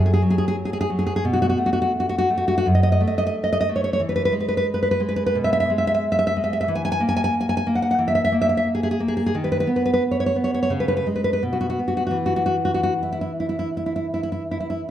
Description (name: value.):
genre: romantic piece for solo classical guitar.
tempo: 88 BPM.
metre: 4/4.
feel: uneven beats, rubato.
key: E major.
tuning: A4 = 440 Hz.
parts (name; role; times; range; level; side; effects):
nylon-string guitar; solo; 0.0-14.9 s; F#2 to G#5; -19 LUFS; equal; none.
room: moderate recital hall reverb, RT60 1.8 s.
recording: dark, warm production.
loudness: -19 LUFS.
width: side -11 dB against mid.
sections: 0.0-14.9 A section.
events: none.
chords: 0.0 N.C.; 4.0 E; 6.7 F#9/E (rootless); 9.4 B/D#; 10.7 C#5; 11.4 N.C..